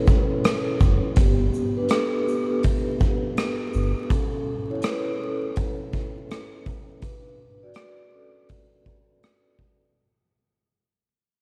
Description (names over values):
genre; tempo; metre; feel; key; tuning
lo-fi hip hop; 82 BPM; 4/4; swing 62% on 16ths; unclear; A4 = 439 Hz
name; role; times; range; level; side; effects
vibraphone with soft mallets; accompaniment; 0.0-10.0 s; B3 to D5; -30 LUFS; equal; low-pass filter, plate reverb
raw garage drum kit; drums; 0.1-9.8 s; hi-hat, kick drum, rim click, shaker; -26 LUFS; equal; none
sub bass with octave; bass; 0.8-3.9 s; F#1 to G1; -24 LUFS; equal; none
room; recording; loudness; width
moderate small room reverb, RT60 0.5 s; dark, warm production, vinyl crackle; -24 LUFS; mono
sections
0.0-9.9 A section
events
fade-out 0.0-9.9; vibraphone solo 0.0-9.9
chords
0.0 F#m7; 1.2 G; 4.1 A; 7.0 D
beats
0.44 | 1.17 1.90 2.63 3.37 | 4.10 4.83 5.56 6.29 | 7.02 7.75 8.49 9.22